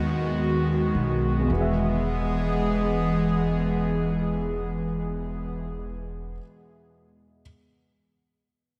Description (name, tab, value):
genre	pop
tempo	35 BPM (dotted quarters)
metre	6/8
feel	straight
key	E major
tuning	A4 = 440 Hz
part	warm baby grand piano	accompaniment	0.0-7.4 s	E2 to E5	-35 LUFS	equal	none
part	airy breathy pad	sustained chords	0.0-5.7 s	D#3 to G#4	-27 LUFS	equal	chorus
part	upright bass	bass	0.0-6.4 s	E1 to D#2	-32 LUFS	equal	none
room	wet lush hall reverb, RT60 2.6 s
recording	dreamy mix soaked in reverb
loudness	-25 LUFS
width	mono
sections	0.0-1.5 A section; 1.5-4.9 B section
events	slowing down 0.0-1.5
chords	0.0 B6; 1.5 E